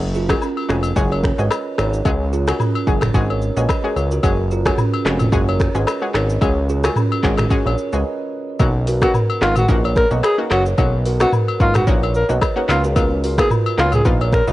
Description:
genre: afrobeats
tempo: 110 BPM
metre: 4/4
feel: swing 55% on 16ths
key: unclear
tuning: A4 = 442 Hz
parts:
  - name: analog pluck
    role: accompaniment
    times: 0.0-14.5 s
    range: Ab3 to Ab4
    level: -24 LUFS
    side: left 2 dB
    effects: chorus
  - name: fat analog bass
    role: bass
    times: 0.0-14.5 s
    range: F1 to Db2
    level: -19 LUFS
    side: equal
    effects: none
  - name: kalimba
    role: riff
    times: 0.1-14.5 s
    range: Db4 to Eb5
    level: -24 LUFS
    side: right 3 dB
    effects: analog delay
  - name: afro-pop drum kit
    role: drums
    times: 0.1-14.5 s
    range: finger snaps, handclaps, hi-hat, kick drum, rim click, shaker, toms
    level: -19 LUFS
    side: equal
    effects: cassette tape
  - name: agogo bells and woodblock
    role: percussion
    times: 0.3-14.3 s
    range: none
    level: -27 LUFS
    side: left 6 dB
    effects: none
  - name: breathy alto saxophone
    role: melody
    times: 9.0-14.5 s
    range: F4 to Bb4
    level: -20 LUFS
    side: equal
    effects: cassette tape
room: little or no reverb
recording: home recording on cassette, nothing above 10.9 kHz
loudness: -15 LUFS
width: side -16 dB against mid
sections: 0.0-8.6 A section; 8.6-14.5 B section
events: break 8.1-8.6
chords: 0.0 Gbsus2; 2.1 Dbsus4; 4.2 Gbsus2; 6.4 Dbsus4; 8.6 Cbmaj7; 12.7 Db13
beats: 0.42 0.96 1.51 | 2.05 2.60 3.14 3.69 | 4.24 4.78 5.33 5.87 | 6.42 6.96 7.51 8.05 | 8.60 9.14 9.69 10.23 | 10.78 11.33 11.87 12.42 | 12.96 13.51 14.05

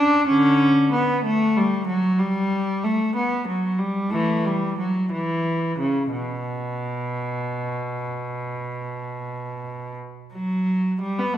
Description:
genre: classical, baroque-style suite movement for unaccompanied cello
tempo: 54-64 BPM (dotted quarters)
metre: 12/8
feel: rubato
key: B minor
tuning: A4 = 441 Hz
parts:
  - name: rich cello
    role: solo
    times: 0.0-11.4 s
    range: B2 to D4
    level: -21 LUFS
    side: equal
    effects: none
room: wet concert hall reverb, RT60 1.8 s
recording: none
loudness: -21 LUFS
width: side -11 dB against mid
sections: 0.0-10.4 A section; 10.4-11.4 A section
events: none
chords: none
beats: 0.28 1.25 | 2.20 3.16 4.12 5.13 | 6.14 7.18 8.23 9.28 | 10.35 11.34

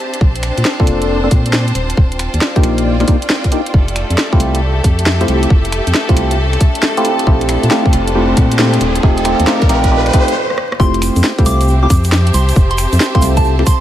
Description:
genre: UK garage, two-step garage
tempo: 136 BPM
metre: 4/4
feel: swing 66% on 16ths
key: F major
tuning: A4 = 440 Hz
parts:
  - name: bright studio violin section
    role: sustained chords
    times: 0.0-13.8 s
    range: A3 to C5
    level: -25 LUFS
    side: equal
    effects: sidechain pumping
  - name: rich studio string section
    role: texture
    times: 0.0-13.8 s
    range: D4 to A5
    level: -24 LUFS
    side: equal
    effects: sidechain pumping
  - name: garage drum kit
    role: drums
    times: 0.1-13.8 s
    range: finger snaps, hi-hat, rim click, snare drum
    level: -18 LUFS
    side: equal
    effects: overdrive
  - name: organ-like FM bass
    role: bass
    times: 0.2-13.6 s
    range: Eb1 to Bb2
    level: -15 LUFS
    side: equal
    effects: none
  - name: electronic kick drum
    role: drums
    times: 0.2-13.8 s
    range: none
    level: -11 LUFS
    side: equal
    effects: none
  - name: percussive organ stab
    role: stabs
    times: 0.8-13.6 s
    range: A3 to A4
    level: -17 LUFS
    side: equal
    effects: chorus, phaser, cassette tape, dub echo
  - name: riser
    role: sound effects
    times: 5.7-10.4 s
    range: none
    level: -23 LUFS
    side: equal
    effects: none
  - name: soft synth bell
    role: melody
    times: 10.8-13.8 s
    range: A5 to D6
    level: -21 LUFS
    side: right 1 dB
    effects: chorus, phaser, tape echo
  - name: tube shaker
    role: percussion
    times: 10.8-13.8 s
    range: none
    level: -27 LUFS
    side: right 4 dB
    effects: none
room: moderate plate reverb, RT60 1.5 s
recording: echo-heavy mix, vinyl crackle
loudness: -11 LUFS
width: side -12 dB against mid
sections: 0.0-10.8 A section; 10.8-13.8 B section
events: build-up 0.0-10.8; riser 5.7-10.4; stop 10.4-10.8; drum fill 10.5-10.8; drop 10.8-13.8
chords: 0.0 Bbmaj9; 1.8 Ebmaj9; 3.7 Fmaj9; 7.0 Bbmaj9; 8.8 Ebmaj9; 10.8 Fmaj9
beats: | 0.21 0.65 1.09 1.53 | 1.98 2.42 2.86 3.30 | 3.74 4.18 4.62 5.06 | 5.50 5.95 6.39 6.83 | 7.27 7.71 8.15 8.59 | 9.03 9.47 9.92 10.36 | 10.80 11.24 11.68 12.12 | 12.56 13.00 13.45

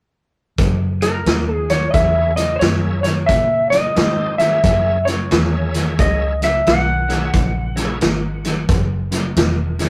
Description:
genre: electric blues shuffle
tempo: 89 BPM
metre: 4/4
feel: swing 64% on 8ths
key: F# mixolydian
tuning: A4 = 440 Hz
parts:
  - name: overdriven semi-hollow guitar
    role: riff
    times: 0.6-9.9 s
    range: F#2 to D#3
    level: -27 LUFS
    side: equal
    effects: spring reverb
  - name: vintage muted fingered electric bass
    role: bass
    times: 0.6-9.9 s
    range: E1 to A#2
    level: -24 LUFS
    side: equal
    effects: none
  - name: vintage drum kit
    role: drums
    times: 0.6-9.9 s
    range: hi-hat, kick drum, snare drum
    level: -22 LUFS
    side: equal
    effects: none
  - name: electric slide guitar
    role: melody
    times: 1.0-8.7 s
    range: A#4 to F#5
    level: -20 LUFS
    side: equal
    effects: none
  - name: bright tonewheel organ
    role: accompaniment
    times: 1.9-9.9 s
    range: A#3 to E5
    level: -31 LUFS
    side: equal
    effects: slow rotary speaker, overdrive, chorus vibrato
room: moderate studio reverb, RT60 0.5 s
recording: rough rehearsal-room recording, tube saturation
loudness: -17 LUFS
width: mono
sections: 0.6-9.9 A section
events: none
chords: 0.6 F#7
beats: | 0.58 1.26 1.94 2.61 | 3.29 3.96 4.64 5.31 | 5.99 6.66 7.34 8.02 | 8.69 9.37

